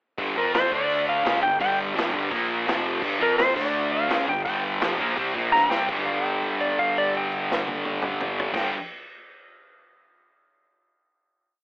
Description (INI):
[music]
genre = garage rock duo or trio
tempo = 168 BPM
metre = 4/4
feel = straight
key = unclear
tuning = A4 = 440 Hz
[part]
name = thick fuzz guitar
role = riff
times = 0.2-8.7 s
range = F2 to F4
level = -25 LUFS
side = equal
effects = distortion
[part]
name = fuzz picked electric bass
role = bass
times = 0.2-8.7 s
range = F1 to F2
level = -32 LUFS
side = equal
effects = overdrive
[part]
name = vintage drum kit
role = drums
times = 0.2-8.6 s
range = crash cymbal, hi-hat, kick drum, snare drum, toms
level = -30 LUFS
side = equal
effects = none
[part]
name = clean lap steel guitar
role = melody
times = 0.4-8.7 s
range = Bb4 to Bb5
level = -23 LUFS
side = equal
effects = none
[sound]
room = moderate small room ambience, RT60 0.5 s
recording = telephone sound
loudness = -21 LUFS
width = side -27 dB against mid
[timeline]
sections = 0.2-5.9 pre-chorus; 5.9-8.8 final chord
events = drum fill 5.5-5.9; held note 5.9-8.5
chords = 0.2 G5; 0.4 F5; 0.7 D5; 1.2 G5; 2.3 Bb5; 2.7 F5; 3.0 G5; 3.2 F5; 3.6 D5; 4.1 G5